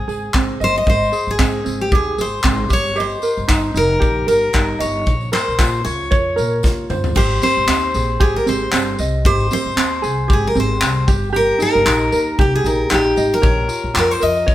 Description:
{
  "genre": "acoustic pop",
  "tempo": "115 BPM",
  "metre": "4/4",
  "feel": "swing 55% on 16ths",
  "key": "unclear",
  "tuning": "A4 = 441 Hz",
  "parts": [
    { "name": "picked steel-string acoustic guitar", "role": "melody", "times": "0.0-14.5 s", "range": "G4 to Eb5", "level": "-19 LUFS", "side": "left 1 dB", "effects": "none" },
    { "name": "ukulele", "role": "accompaniment", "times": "0.0-14.5 s", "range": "C4 to Eb5", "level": "-21 LUFS", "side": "right 2 dB", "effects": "none" },
    { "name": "upright bass", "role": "bass", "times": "0.0-14.5 s", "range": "F1 to Bb2", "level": "-22 LUFS", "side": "equal", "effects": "none" },
    { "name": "tambourine", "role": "percussion", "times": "0.1-14.5 s", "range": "none", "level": "-37 LUFS", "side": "left 6 dB", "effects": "none" },
    { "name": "modern studio drum kit", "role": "drums", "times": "0.3-14.5 s", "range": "crash cymbal, handclaps, kick drum, snare drum, tambourine, toms", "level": "-19 LUFS", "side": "equal", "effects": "none" }
  ],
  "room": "moderate large studio reverb, RT60 1.2 s",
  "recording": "band playing live in one room",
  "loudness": "-14 LUFS",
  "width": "side -13 dB against mid",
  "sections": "0.0-7.2 A section; 7.2-14.5 B section",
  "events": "drum fill 6.6-7.2",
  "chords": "0.0 Abmaj7; 2.7 Eb; 5.1 Bbmadd9; 7.2 Eb/G; 13.4 Bbm"
}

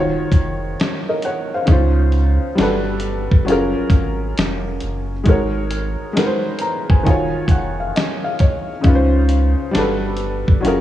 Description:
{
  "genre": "lo-fi hip hop",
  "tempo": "67 BPM",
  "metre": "4/4",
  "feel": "swing 64% on 16ths",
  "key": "unclear",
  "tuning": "A4 = 440 Hz",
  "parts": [
    { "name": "felt-muted upright piano", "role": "accompaniment", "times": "0.0-10.8 s", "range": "Db3 to Bb5", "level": "-19 LUFS", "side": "left 1 dB", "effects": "cassette tape" },
    { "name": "soft dub sub bass", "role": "bass", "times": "0.0-10.8 s", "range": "Eb1 to Db2", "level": "-20 LUFS", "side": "right 1 dB", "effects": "none" },
    { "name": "dusty soul sampler-style drum kit", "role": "drums", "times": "0.3-10.8 s", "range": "hi-hat, kick drum, snare drum", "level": "-17 LUFS", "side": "equal", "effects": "none" }
  ],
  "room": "light reverb",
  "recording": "cassette tape, small room ambience",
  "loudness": "-15 LUFS",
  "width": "side -12 dB against mid",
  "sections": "0.0-10.8 A section",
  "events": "felt piano fill 6.2-8.8",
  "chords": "0.0 Ebm9; 1.7 Dbmaj9; 2.6 Gmaj9; 3.5 Gbmaj9; 5.3 Ab7sus4; 7.1 Ebm9; 8.8 Dbmaj9; 9.7 Gmaj9"
}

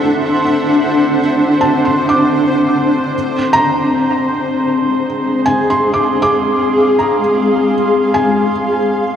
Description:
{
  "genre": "ambient",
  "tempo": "78 BPM",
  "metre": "4/4",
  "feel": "straight",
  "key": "unclear",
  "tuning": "A4 = 440 Hz",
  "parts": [
    { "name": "granular cloud pad", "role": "sustained chords", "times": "0.0-9.2 s", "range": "D4 to F#5", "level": "-14 LUFS", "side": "equal", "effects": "built-in reverb, shimmer reverb" },
    { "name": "felt-muted upright piano", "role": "arpeggios", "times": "0.0-9.2 s", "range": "Ab5 to D6", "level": "-18 LUFS", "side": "right 1 dB", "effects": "diffuse ambient delay, shimmer reverb" },
    { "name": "glass harmonica", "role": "texture", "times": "0.0-9.2 s", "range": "C4 to C6", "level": "-19 LUFS", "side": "left 2 dB", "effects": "shimmer reverb" }
  ],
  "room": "wet huge ambient reverb, RT60 8.2 s",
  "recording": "none",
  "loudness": "-11 LUFS",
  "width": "side -8 dB against mid",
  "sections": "0.0-9.2 A section",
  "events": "none",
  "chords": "0.0 D7; 3.1 Fm"
}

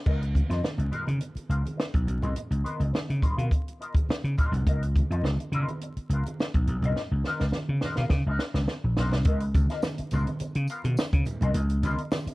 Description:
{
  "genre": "funk",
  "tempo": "104 BPM",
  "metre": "4/4",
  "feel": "straight",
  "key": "Db mixolydian",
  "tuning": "A4 = 440 Hz",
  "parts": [
    { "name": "electric guitar with an envelope filter", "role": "accompaniment", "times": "0.1-12.3 s", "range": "Cb4 to F5", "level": "-35 LUFS", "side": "left 3 dB", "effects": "wah, analog chorus" },
    { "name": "vintage slap bass", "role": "bass", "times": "0.1-12.3 s", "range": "Bb1 to Db3", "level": "-26 LUFS", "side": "equal", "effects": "none" },
    { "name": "compact cocktail drum kit", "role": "drums", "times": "0.1-12.3 s", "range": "crash cymbal, hi-hat, kick drum, snare drum", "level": "-27 LUFS", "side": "equal", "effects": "none" },
    { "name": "congas", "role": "percussion", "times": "0.1-12.3 s", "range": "none", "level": "-36 LUFS", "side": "right 2 dB", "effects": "none" },
    { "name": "tambourine", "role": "percussion", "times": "9.5-12.3 s", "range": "none", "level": "-52 LUFS", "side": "left 2 dB", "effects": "none" }
  ],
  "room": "studio ambience",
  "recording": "dark, warm production, vinyl crackle",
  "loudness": "-24 LUFS",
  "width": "side -21 dB against mid",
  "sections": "0.1-9.3 A section; 9.3-12.3 B section",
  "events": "drum fill 7.0-9.3",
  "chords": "0.1 Db13"
}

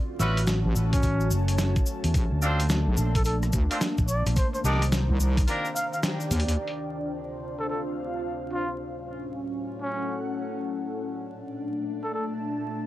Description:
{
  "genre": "glitch hop",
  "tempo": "108 BPM",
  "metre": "4/4",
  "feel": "swing 63% on 16ths",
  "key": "unclear",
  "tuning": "A4 = 440 Hz",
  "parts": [
    { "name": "warbly tape-like pad", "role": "sustained chords", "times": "0.0-12.9 s", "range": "D2 to G4", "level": "-35 LUFS", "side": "left 1 dB", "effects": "chorus, built-in reverb, phaser, vintage 12-bit sampler grit, sidechain pumping" },
    { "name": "airy breathy pad", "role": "texture", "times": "0.0-12.9 s", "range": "Eb3 to Bb5", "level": "-34 LUFS", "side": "equal", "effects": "chorus, sidechain pumping" },
    { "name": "clear horn section", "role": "stabs", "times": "0.2-5.7 s", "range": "Bb3 to D5", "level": "-31 LUFS", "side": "equal", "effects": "sidechain pumping, tape echo" },
    { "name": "fingered electric bass", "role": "bass", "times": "0.2-5.1 s", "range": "F#1 to E2", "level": "-25 LUFS", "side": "equal", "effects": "none" },
    { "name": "boom bap sampler-style drum kit", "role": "drums", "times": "0.2-6.8 s", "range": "hi-hat, rim click, snare drum", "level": "-30 LUFS", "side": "equal", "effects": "low-pass filter on hats, low-pass filter on snare" },
    { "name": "tube shaker", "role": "percussion", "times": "0.2-6.6 s", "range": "none", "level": "-38 LUFS", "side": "left 2 dB", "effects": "none" },
    { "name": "wobble bass", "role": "bass", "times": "0.7-6.6 s", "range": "A1 to Eb2", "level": "-24 LUFS", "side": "equal", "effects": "chorus" },
    { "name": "breathy trumpet", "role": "melody", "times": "0.9-12.3 s", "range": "C#4 to F5", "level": "-33 LUFS", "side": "equal", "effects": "tape echo" },
    { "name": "electronic kick drum", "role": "drums", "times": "0.9-5.5 s", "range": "none", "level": "-25 LUFS", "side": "equal", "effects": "none" }
  ],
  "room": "little or no reverb",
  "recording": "dry, gritty hardware recording, vinyl crackle",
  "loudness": "-24 LUFS",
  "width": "side -15 dB against mid",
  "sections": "0.0-6.6 A section; 6.6-12.9 B section",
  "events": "break 5.5-6.6; band accent 6.0; drum fill 6.3",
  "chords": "0.0 A6; 2.1 Bbmaj7; 4.4 Cm7; 5.5 Ebmaj7; 6.6 Dm7; 8.8 A6; 11.0 Bbmaj7"
}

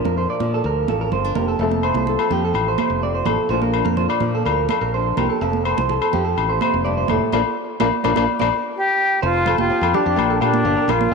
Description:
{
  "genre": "highlife guitar band",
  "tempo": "126 BPM",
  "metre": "4/4",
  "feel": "straight",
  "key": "unclear",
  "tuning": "A4 = 437 Hz",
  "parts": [
    { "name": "flamenco guitar", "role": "accompaniment", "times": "0.0-11.1 s", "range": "F2 to A4", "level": "-25 LUFS", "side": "left 12 dB", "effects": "none" },
    { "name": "electric guitar at the edge of break-up", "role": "arpeggios", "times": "0.0-11.1 s", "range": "F4 to D5", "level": "-22 LUFS", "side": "right 8 dB", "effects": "spring reverb, slapback echo" },
    { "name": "fingered electric bass", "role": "bass", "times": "0.0-11.1 s", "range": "F1 to Bb2", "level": "-24 LUFS", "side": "left 2 dB", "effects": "none" },
    { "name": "congas", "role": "percussion", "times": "0.1-11.1 s", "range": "none", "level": "-26 LUFS", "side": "right 11 dB", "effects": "none" },
    { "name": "agogo bells", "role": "percussion", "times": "1.8-11.0 s", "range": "none", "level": "-24 LUFS", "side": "left 13 dB", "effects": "none" },
    { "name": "reedy silver concert flute", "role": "melody", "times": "8.8-11.1 s", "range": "D4 to G4", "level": "-19 LUFS", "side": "left 1 dB", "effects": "none" }
  ],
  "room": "wet plate reverb, RT60 3.5 s",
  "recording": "1960s-style stereo with parts hard left and right",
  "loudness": "-17 LUFS",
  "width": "side -4 dB against mid",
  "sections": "0.0-9.2 A section; 9.2-11.1 B section",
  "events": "band accent 7.3-9.2",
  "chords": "0.0 Bb; 1.6 F; 3.5 Bb; 5.4 F; 7.3 Bb; 9.2 Fsus2; 10.2 Bb6"
}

